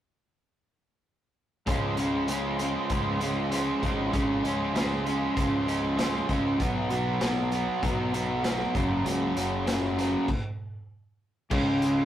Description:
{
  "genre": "classic rock",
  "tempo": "98 BPM",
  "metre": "4/4",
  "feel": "straight",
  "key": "Db mixolydian",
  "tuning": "A4 = 440 Hz",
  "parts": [
    { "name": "crunchy overdriven guitar", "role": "riff", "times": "1.7-12.1 s", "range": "Gb2 to F4", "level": "-29 LUFS", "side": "left 2 dB", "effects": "none" },
    { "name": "crunchy overdriven guitar", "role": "riff", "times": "1.7-12.1 s", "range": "Gb2 to Db4", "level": "-29 LUFS", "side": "right 3 dB", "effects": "none" },
    { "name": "growling fingered electric bass", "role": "bass", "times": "1.7-12.1 s", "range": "Gb1 to Db2", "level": "-35 LUFS", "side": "left 1 dB", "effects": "overdrive" },
    { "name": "raw garage drum kit", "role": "drums", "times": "1.7-12.0 s", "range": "crash cymbal, hi-hat, kick drum, snare drum", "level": "-31 LUFS", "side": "equal", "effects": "none" },
    { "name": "picked steel-string acoustic guitar", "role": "accompaniment", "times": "11.5-12.1 s", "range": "Db3 to Db5", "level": "-34 LUFS", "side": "left 1 dB", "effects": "none" }
  ],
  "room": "wet studio reverb, RT60 0.6 s",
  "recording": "rough rehearsal-room recording, tube saturation",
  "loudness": "-25 LUFS",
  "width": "side -11 dB against mid",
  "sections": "1.7-11.5 A section",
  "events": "stop 10.3-11.5",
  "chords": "1.7 Db; 6.6 Cb; 8.7 Gb; 11.5 Db"
}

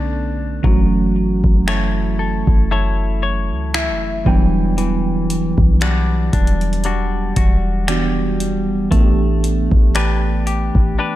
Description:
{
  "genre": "contemporary R&B",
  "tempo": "58 BPM",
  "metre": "4/4",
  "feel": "swing 54% on 16ths",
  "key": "unclear",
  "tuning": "A4 = 440 Hz",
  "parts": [
    { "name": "tine electric piano", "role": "accompaniment", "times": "0.0-11.2 s", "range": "D3 to G5", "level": "-21 LUFS", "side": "right 5 dB", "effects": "overdrive, analog chorus" },
    { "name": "semi-hollow electric guitar", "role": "arpeggios", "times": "0.0-11.2 s", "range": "E3 to C#5", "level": "-23 LUFS", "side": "left 6 dB", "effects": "digital delay" },
    { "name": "clean 808-style bass", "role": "bass", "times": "0.0-11.0 s", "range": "E1 to C#2", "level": "-19 LUFS", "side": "equal", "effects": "none" },
    { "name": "booming analog drum machine", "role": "drums", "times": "0.6-10.9 s", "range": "finger snaps, hi-hat, kick drum", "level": "-17 LUFS", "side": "equal", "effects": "none" }
  ],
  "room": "little or no reverb",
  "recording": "dark, warm production",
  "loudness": "-14 LUFS",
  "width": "side -14 dB against mid",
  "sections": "0.0-11.2 A section",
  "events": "tine electric piano fill 3.2-4.8; break 11.0",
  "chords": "0.0 Bm9; 0.6 F#m7; 4.3 Em9; 8.9 A9sus4"
}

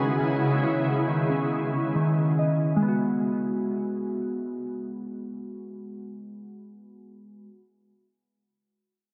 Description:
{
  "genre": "hip hop",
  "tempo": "137 BPM",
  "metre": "4/4",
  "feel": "half-time",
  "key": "G# minor",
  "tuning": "A4 = 439 Hz",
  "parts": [
    { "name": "shimmering ambient pad", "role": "sustained chords", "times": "0.0-1.1 s", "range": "C#3 to G#4", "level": "-29 LUFS", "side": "equal", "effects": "chorus, built-in reverb, low-pass filter" },
    { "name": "glassy digital keys", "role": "arpeggios", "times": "0.0-7.6 s", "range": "C#3 to D#5", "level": "-29 LUFS", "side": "equal", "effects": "chorus, low-pass filter, tape echo" }
  ],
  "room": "wet echo chamber reverb, RT60 1.9 s",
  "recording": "dense, heavily limited modern master",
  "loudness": "-26 LUFS",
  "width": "mono",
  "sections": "0.0-2.8 A section; 2.8-6.3 B section",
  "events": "filter sweep 0.0-2.8",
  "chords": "0.0 C#m7; 1.1 C#sus2/D#; 2.8 G#m7"
}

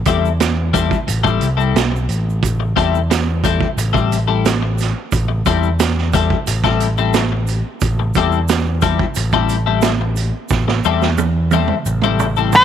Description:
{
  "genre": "psychedelic rock",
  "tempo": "89 BPM",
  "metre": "4/4",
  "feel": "straight",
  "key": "A minor",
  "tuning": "A4 = 440 Hz",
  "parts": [
    { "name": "twelve-string electric guitar", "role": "riff", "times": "0.1-12.6 s", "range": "G3 to A4", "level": "-19 LUFS", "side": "left 12 dB", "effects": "flanger" },
    { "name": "overdriven picked electric bass", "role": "bass", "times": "0.1-12.6 s", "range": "A1 to E2", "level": "-18 LUFS", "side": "equal", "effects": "none" },
    { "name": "vintage drum kit", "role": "drums", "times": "0.1-12.6 s", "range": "hi-hat, kick drum, snare drum, toms", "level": "-20 LUFS", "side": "right 5 dB", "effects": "none" },
    { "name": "tube shaker", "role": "percussion", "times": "0.1-12.6 s", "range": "none", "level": "-33 LUFS", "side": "right 13 dB", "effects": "none" },
    { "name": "octave-fuzz lead guitar", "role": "melody", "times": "12.6 s", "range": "C5", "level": "-5 LUFS", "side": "equal", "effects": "wah, distortion" }
  ],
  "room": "light reverb, small room ambience",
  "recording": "1960s-style stereo with parts hard left and right",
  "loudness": "-14 LUFS",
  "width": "side -9 dB against mid",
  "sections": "0.0-12.6 A section",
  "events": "drum fill 10.5-12.6",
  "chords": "0.0 Am7"
}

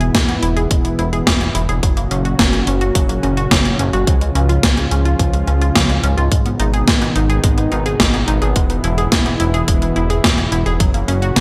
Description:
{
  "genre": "synthwave",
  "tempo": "107 BPM",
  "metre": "4/4",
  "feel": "straight",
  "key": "unclear",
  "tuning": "A4 = 440 Hz",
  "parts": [
    { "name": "warm analog pad", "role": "sustained chords", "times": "0.0-11.4 s", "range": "G#2 to F#4", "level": "-24 LUFS", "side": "equal", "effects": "chorus" },
    { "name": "analog pluck", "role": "arpeggios", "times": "0.0-11.4 s", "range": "E#3 to G#4", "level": "-25 LUFS", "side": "equal", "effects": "chorus, delay" },
    { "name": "chorused synth bass", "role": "bass", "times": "0.0-11.4 s", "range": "E1 to C#2", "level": "-21 LUFS", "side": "equal", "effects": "sidechain pumping" },
    { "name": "gated 80s digital drum machine", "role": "drums", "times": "0.0-11.4 s", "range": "hi-hat, snare drum", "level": "-20 LUFS", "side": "equal", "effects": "gated reverb, gated reverb snare, overdrive" },
    { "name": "electronic kick drum", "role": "drums", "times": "0.1-11.4 s", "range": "none", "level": "-20 LUFS", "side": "equal", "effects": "none" }
  ],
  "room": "moderate plate reverb, RT60 1.9 s, digital ambience",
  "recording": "bright 1980s-style digital production",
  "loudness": "-16 LUFS",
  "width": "mono",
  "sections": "0.0-11.4 A section",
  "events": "none",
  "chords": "0.0 E; 1.8 F#; 4.1 C#; 6.3 G#m; 8.6 E; 10.8 F#"
}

